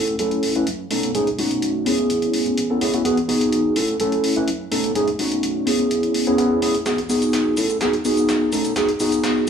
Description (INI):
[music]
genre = filtered disco house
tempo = 126 BPM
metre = 4/4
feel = straight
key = unclear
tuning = A4 = 439 Hz
[part]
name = mellow tine electric piano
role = accompaniment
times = 0.0-9.5 s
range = A3 to B4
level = -18 LUFS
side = equal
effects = medium stereo tremolo, phaser, vintage 12-bit sampler grit, low-pass filter
[part]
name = fingered electric bass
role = bass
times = 0.0-9.4 s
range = E1 to B2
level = -34 LUFS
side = equal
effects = high-pass filter, low-pass filter
[part]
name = punchy analog drum machine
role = drums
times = 0.1-9.3 s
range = hi-hat, shaker, snare drum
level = -27 LUFS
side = left 1 dB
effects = overdrive, high-pass filter on snare, high-pass filter on hats, high-pass filter on perc
[sound]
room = light reverb, digital ambience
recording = dry, gritty hardware recording, cassette tape, small room ambience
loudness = -18 LUFS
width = side -7 dB against mid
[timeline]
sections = 0.0-9.5 A section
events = build-up 0.0-9.5; filter sweep 0.0-9.5; drum fill 6.9-9.5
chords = 0.0 F#m7; 0.9 B7; 1.9 Amaj7; 3.0 Emaj7; 3.8 F#m7; 4.7 B7; 5.7 Amaj7; 6.9 Emaj7; 7.6 F#m7; 8.5 B7